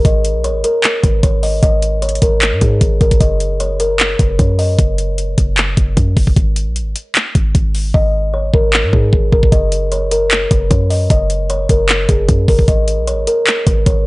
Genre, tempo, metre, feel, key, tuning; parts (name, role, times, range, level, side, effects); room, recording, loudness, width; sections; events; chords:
hip hop, trap; 152 BPM; 4/4; half-time; G# minor; A4 = 440 Hz
kalimba; melody; 0.0-4.8, 7.9-14.0 s; G#4 to D#5; -17 LUFS; equal; low-pass filter, tape echo
warm 808-style bass; bass; 0.0-14.1 s; F#1 to G#2; -16 LUFS; equal
trap drum kit; drums; 0.0-14.0 s; handclaps, hi-hat, kick drum; -13 LUFS; equal
digital ambience; dry, gritty hardware recording, transformer saturation, nothing above 10.5 kHz; -11 LUFS; side -22 dB against mid
0.0-14.1 A section
hi-hats muted 7.9-9.5
0.0 G#sus2; 3.2 N.C.; 9.5 F#; 12.7 G#sus2